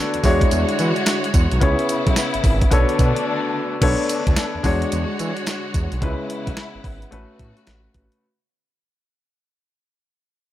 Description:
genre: R&B, new jack swing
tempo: 109 BPM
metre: 4/4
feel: swing 64% on 16ths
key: B dorian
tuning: A4 = 440 Hz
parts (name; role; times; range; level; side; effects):
- warm grand piano; accompaniment; 0.0-8.2 s; G#3 to C#5; -23 LUFS; left 2 dB; none
- warm studio string section; sustained chords; 0.0-8.2 s; C#3 to C#5; -26 LUFS; equal; none
- smooth synth bass; bass; 0.1-8.1 s; G#1 to E3; -22 LUFS; equal; none
- clean 12-bit digital drum machine; drums; 0.1-8.2 s; crash cymbal, hi-hat, kick drum, snare drum, tambourine; -20 LUFS; equal; none
room: digital ambience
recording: none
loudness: -17 LUFS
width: side -13 dB against mid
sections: 0.0-3.8 A section; 3.8-8.2 B section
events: break 3.3-3.8; fade-out 3.8-8.2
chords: 0.2 E13; 1.6 C#m7; 2.7 Bm9; 4.6 E13; 6.0 C#m7; 7.1 A69

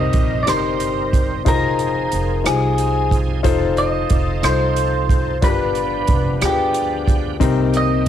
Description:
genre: slow gospel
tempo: 61 BPM (dotted quarters)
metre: 6/8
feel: straight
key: unclear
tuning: A4 = 439 Hz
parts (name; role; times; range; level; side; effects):
- clean electric guitar; melody; 0.0-8.1 s; G4 to Eb5; -22 LUFS; right 2 dB; lush chorus, cassette tape, tape echo
- warm concert grand piano; accompaniment; 0.0-8.1 s; G2 to C5; -21 LUFS; left 9 dB; none
- bright tonewheel organ; sustained chords; 0.0-8.1 s; Eb3 to Bb4; -29 LUFS; right 8 dB; overdrive, chorus vibrato, slow rotary speaker
- upright bass; bass; 0.0-8.1 s; F1 to D2; -22 LUFS; right 1 dB; none
- swinging big-band drum kit; drums; 0.1-8.1 s; hi-hat, kick drum, rim click; -20 LUFS; right 2 dB; none
room: light reverb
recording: home recording on cassette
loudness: -16 LUFS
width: side -10 dB against mid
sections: 0.0-8.1 A section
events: none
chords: 0.0 Cm7; 1.5 Fm7; 3.4 F7; 5.4 G7; 7.4 Cm7

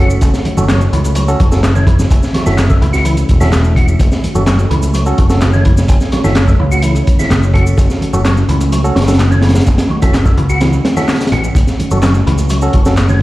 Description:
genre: breakbeat, breaks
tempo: 127 BPM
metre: 4/4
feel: straight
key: F# minor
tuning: A4 = 440 Hz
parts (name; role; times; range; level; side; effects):
- deep dark ambient pad; sustained chords; 0.0-13.2 s; A3 to F#5; -21 LUFS; equal; chorus, built-in reverb, vintage 12-bit sampler grit, sidechain pumping
- percussive tonewheel organ; riff; 0.0-13.2 s; E3 to F#4; -20 LUFS; equal; chorus vibrato, fast rotary speaker, vintage 12-bit sampler grit, dub echo
- barky tine electric piano; stabs; 0.0-12.9 s; C#4 to A4; -21 LUFS; right 2 dB; overdrive, vintage 12-bit sampler grit, dub echo
- picked electric bass; bass; 0.0-13.2 s; E1 to C#2; -13 LUFS; equal; none
- electronic shaker and handclaps; drums; 0.1-13.2 s; none; -25 LUFS; equal; none
- crunchy breakbeat drum kit; drums; 0.2-13.1 s; hi-hat, kick drum, snare drum; -13 LUFS; equal; none
- bongos and congas; percussion; 0.2-13.2 s; none; -23 LUFS; right 2 dB; none
room: light reverb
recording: played on a big sound system in a bare room, large studio reverb, vinyl crackle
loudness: -9 LUFS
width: side -17 dB against mid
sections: 0.0-13.2 A section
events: kick drops out 10.6-11.6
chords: 0.0 F#m

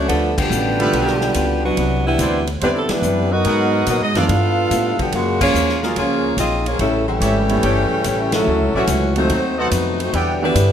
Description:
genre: jazz, big band swing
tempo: 144 BPM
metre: 4/4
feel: swing 67% on 8ths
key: unclear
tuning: A4 = 440 Hz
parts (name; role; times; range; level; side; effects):
- clear saxophone section; melody; 0.0-10.7 s; C#3 to F5; -19 LUFS; left 1 dB; none
- clear trombone section; second line; 0.0-10.7 s; G2 to F4; -24 LUFS; right 4 dB; none
- upright bass; bass; 0.0-10.7 s; G1 to A#2; -21 LUFS; equal; none
- archtop guitar, miked and amplified; accompaniment; 0.1-10.7 s; G2 to A#4; -28 LUFS; left 5 dB; none
- swinging big-band drum kit; drums; 0.1-10.7 s; crash cymbal, hi-hat, kick drum, ride cymbal, snare drum; -27 LUFS; equal; none
- clear baby grand piano; accompaniment; 0.8-10.5 s; D3 to F#4; -24 LUFS; right 3 dB; none
- warm trumpet section; stabs; 0.8-10.3 s; B3 to G5; -25 LUFS; right 1 dB; none
room: light reverb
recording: none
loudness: -15 LUFS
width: side -8 dB against mid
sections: 0.0-10.7 A section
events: band accent 0.3, 2.8, 5.3, 8.3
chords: 0.1 G9; 1.8 Cmaj9; 3.5 G#m9; 4.3 G13; 5.1 F#maj9; 6.8 A7; 8.5 Dmaj9; 9.3 D#dim7; 10.1 Em7

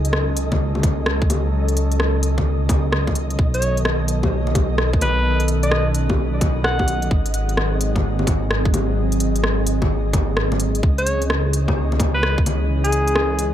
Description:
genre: future garage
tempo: 129 BPM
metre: 4/4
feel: swing 65% on 16ths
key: C# minor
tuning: A4 = 438 Hz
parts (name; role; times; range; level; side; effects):
- warbly tape-like pad; sustained chords; 0.0-13.5 s; D#3 to A4; -26 LUFS; equal; chorus, built-in reverb, vintage 12-bit sampler grit, sidechain pumping
- dark detuned saw bass; bass; 0.0-13.5 s; G#1 to C#2; -21 LUFS; equal; none
- organic electronic drum kit; drums; 0.0-13.5 s; bongos, hi-hat, rim click; -24 LUFS; left 1 dB; overdrive
- flickering grainy texture; texture; 0.0-13.5 s; D#5; -32 LUFS; right 1 dB; built-in reverb
- electronic kick drum; drums; 0.5-12.4 s; none; -19 LUFS; equal; none
- breathy alto saxophone; melody; 3.5-7.1, 11.0-13.5 s; G#4 to F#5; -26 LUFS; equal; dub echo
room: digital ambience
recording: none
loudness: -17 LUFS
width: side -11 dB against mid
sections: 0.0-13.5 A section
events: kick drops out 10.4-10.8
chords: 0.0 F#m/C#; 3.4 B7; 7.1 G#7; 10.8 C#m

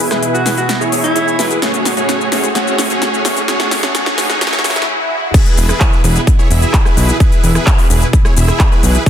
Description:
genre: EDM, festival progressive house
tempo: 129 BPM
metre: 4/4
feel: straight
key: E major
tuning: A4 = 439 Hz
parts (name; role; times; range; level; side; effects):
- lush unison pad; sustained chords; 0.0-9.1 s; A2 to G#4; -22 LUFS; equal; chorus, phaser, sidechain pumping
- dense compressed supersaw; riff; 0.0-9.1 s; A3 to E5; -17 LUFS; right 1 dB; sidechain pumping, low-pass filter, ping-pong delay
- fat analog bass; bass; 0.0-9.0 s; E1 to B1; -16 LUFS; equal; sidechain pumping, high-pass filter
- big-room dance drum kit; drums; 0.0-9.1 s; crash cymbal, handclaps, hi-hat, rim click, shaker, snare drum; -18 LUFS; left 1 dB; overdrive, high-pass filter on hats, small room ambience, high-pass filter on snare, high-pass filter on perc, high-pass filter on cymbals
- riser and swell; sound effects; 0.2-5.3 s; none; -23 LUFS; left 1 dB; none
- breathy alto saxophone; melody; 0.3-1.5 s; E4 to F#4; -20 LUFS; equal; ping-pong delay
- electronic kick drum; drums; 5.3-9.1 s; none; -11 LUFS; equal; overdrive, small room ambience
room: light reverb, digital ambience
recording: dense, heavily limited modern master, high-pass filter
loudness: -11 LUFS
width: side -9 dB against mid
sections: 0.0-5.3 A section; 5.3-9.1 B section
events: build-up 0.0-5.3; drum fill 0.0-4.9; filter sweep on supersaw synth 0.0-5.3; filter sweep 0.0-5.3; riser 0.2-4.9; swell 4.4-5.3; break 4.9-5.3; drop 5.3-9.1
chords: 0.0 E; 1.6 F#madd9; 5.3 E

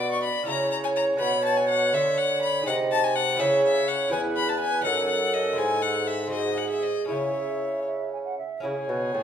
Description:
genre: classical, baroque-style sonata movement with continuo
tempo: 82 BPM (dotted quarters)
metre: 6/8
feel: straight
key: C# minor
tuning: A4 = 440 Hz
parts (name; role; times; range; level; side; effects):
- rich violin; melody; 0.0-9.2 s; G#4 to D6; -27 LUFS; left 6 dB; none
- baroque flute; second line; 0.0-9.2 s; G#4 to G#5; -27 LUFS; right 2 dB; none
- lute; accompaniment; 0.0-9.2 s; E2 to E5; -34 LUFS; left 2 dB; none
- warm bassoon; bass; 0.0-9.2 s; E2 to D3; -28 LUFS; right 2 dB; none
room: wet recital hall reverb, RT60 1.7 s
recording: minimal, uncompressed stereo recording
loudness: -22 LUFS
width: side -8 dB against mid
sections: 0.0-8.6 A section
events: none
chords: 0.5 C#m6; 1.2 Bm; 2.7 G#/B#; 3.4 C#m; 4.1 C#m/E; 4.8 D#m7b5/F#; 5.6 C#m/G#; 6.3 G#7; 7.1 C#m

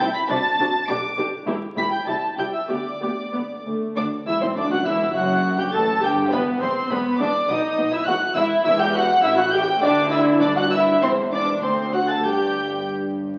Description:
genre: quick classical-period movement for string orchestra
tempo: 93-104 BPM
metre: 2/4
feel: rubato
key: unclear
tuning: A4 = 440 Hz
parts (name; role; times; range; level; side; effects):
- warm symphonic violin section; melody; 0.0-12.9 s; B5 to D7; -29 LUFS; equal; none
- dark symphonic violin section; second line; 0.0-12.9 s; B4 to D6; -25 LUFS; equal; none
- warm studio viola section; accompaniment; 0.0-12.9 s; A3 to A4; -26 LUFS; equal; none
- rich symphonic cello section; bass; 0.0-13.3 s; C2 to D3; -29 LUFS; equal; none
- warm symphonic double bass section; bass; 0.0-13.3 s; E1 to D2; -35 LUFS; equal; none
room: wet recital hall reverb, RT60 1.5 s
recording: very old 78 rpm record, vinyl crackle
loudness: -21 LUFS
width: mono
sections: 0.0-4.0 A section; 4.0-13.4 B section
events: none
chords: 0.3 D7/C; 0.9 G/B; 1.5 Em; 2.1 Am7/C; 2.7 G/D; 3.3 D5; 4.0 D9/E; 5.1 N.C.; 5.7 Gsus2; 6.3 Cmaj9/E; 7.5 B; 8.1 Esus2; 9.2 Emadd11/A; 9.8 Dsus2; 10.4 Em9/G; 11.0 C/E; 11.6 D7; 12.2 N.C.

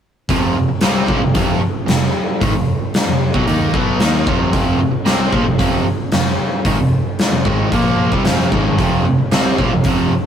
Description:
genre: hard rock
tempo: 113 BPM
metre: 4/4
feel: straight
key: unclear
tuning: A4 = 442 Hz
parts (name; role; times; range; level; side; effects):
- crunchy overdriven guitar; riff; 0.3-10.2 s; F2 to Eb4; -19 LUFS; right 5 dB; none
- overdriven semi-hollow guitar; riff; 0.3-10.2 s; F2 to Eb4; -20 LUFS; left 4 dB; spring reverb
- overdriven picked electric bass; bass; 0.3-10.2 s; F1 to Eb2; -24 LUFS; equal; none
- huge arena drum kit; drums; 0.3-10.0 s; hi-hat, kick drum, snare drum; -17 LUFS; equal; none
room: moderate studio ambience, RT60 0.5 s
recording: rough rehearsal-room recording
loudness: -14 LUFS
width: side -8 dB against mid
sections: 0.3-10.3 A section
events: none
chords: 0.3 F5

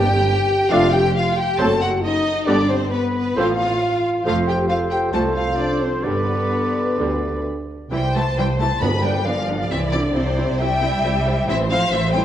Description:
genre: quick classical-period movement for symphony orchestra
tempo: 135 BPM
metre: 4/4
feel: rubato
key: C major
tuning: A4 = 441 Hz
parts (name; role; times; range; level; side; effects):
- rich symphonic violin section; melody; 0.0-12.2 s; B4 to B5; -24 LUFS; left 3 dB; none
- mellow silver concert flute; second line; 0.0-7.5 s; B4 to A5; -27 LUFS; equal; none
- rich chamber violin section; second line; 0.0-12.2 s; B3 to E5; -27 LUFS; left 2 dB; none
- warm symphonic viola section; accompaniment; 0.0-12.2 s; D3 to E4; -27 LUFS; right 1 dB; none
- dark French horn section; sustained chords; 0.0-7.5 s; B3 to A4; -23 LUFS; left 2 dB; none
- warm chamber double bass section; bass; 0.0-12.2 s; F1 to D2; -25 LUFS; right 2 dB; none
- warm symphonic cello section; bass; 0.0-12.2 s; C2 to B3; -27 LUFS; right 2 dB; none
- timpani; percussion; 0.0-0.5, 8.8-9.4 s; G2; -27 LUFS; equal; none
- mellow clarinet; second line; 0.7-7.7 s; G4 to A4; -30 LUFS; left 2 dB; none
- warm oboe; second line; 0.7-7.7 s; C5 to D5; -29 LUFS; right 2 dB; none
- mellow bassoon; accompaniment; 0.7-7.7 s; D3 to A3; -27 LUFS; right 1 dB; none
room: wet recital hall reverb, RT60 1.7 s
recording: worn, warbling old tape, cassette tape, warbly pitch drift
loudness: -17 LUFS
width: side -10 dB against mid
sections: 0.0-7.9 A section; 7.9-12.2 B section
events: none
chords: 0.0 N.C.; 0.7 Dm/F; 1.6 F#dim7; 2.5 G; 3.4 F/A; 4.3 F; 6.1 G; 7.9 C; 8.8 G7; 9.7 C; 11.5 Am

